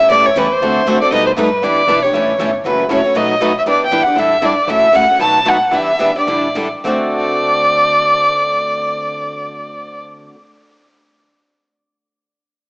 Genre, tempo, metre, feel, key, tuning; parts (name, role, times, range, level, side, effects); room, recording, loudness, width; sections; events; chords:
acoustic string swing (jazz manouche); 200-236 BPM; 4/4; swing 57% on 8ths; D mixolydian; A4 = 440 Hz
rich violin; melody; 0.0-10.0 s; B4 to A5; -13 LUFS; equal
picked steel-string acoustic guitar; accompaniment; 0.0-10.4 s; B2 to A4; -22 LUFS; equal; cassette tape
upright bass; bass; 0.0-10.3 s; F#1 to B2; -33 LUFS; equal
picked swing-style acoustic guitar; accompaniment; 0.1-10.4 s; B2 to B4; -20 LUFS; equal; cassette tape
moderate lush hall reverb, RT60 2.4 s; home recording on cassette, small speaker sound; -11 LUFS; side -32 dB against mid
0.0-2.6 A section; 2.6-6.8 B section; 6.8-9.2 C section
slowing down 4.7-6.8
0.0 A7; 0.6 D7; 1.1 Baug7; 1.6 Em7; 2.1 A7; 2.6 F#m7; 3.2 B7; 3.7 Em7; 4.2 A7sus4; 4.7 F#m7; 5.2 B7; 5.7 Em7; 6.3 A7sus4; 6.8 D7